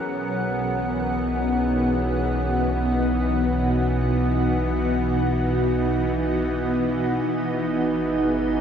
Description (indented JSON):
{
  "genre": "ambient",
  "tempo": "free time",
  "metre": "none",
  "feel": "none",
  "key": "unclear",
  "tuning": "A4 = 441 Hz",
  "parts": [
    { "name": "soft additive organ-like pad", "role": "sustained chords", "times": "0.0-8.6 s", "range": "B2 to F#5", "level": "-22 LUFS", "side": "equal", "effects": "ensemble chorus, built-in reverb, tremolo, shimmer reverb" },
    { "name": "bowed-like drone", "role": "drone", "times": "0.0-8.6 s", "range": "E3 to B3", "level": "-27 LUFS", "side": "right 1 dB", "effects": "built-in reverb" },
    { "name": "warm sub bass", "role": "bass", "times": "0.1-8.6 s", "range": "G#1 to B1", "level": "-29 LUFS", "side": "equal", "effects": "tube saturation" }
  ],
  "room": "wet huge ambient reverb, RT60 8.6 s",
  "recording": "in a vast, echoing space",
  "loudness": "-20 LUFS",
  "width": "side -8 dB against mid",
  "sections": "0.0-8.6 A section",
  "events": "none",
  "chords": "0.1 B; 7.3 G#5"
}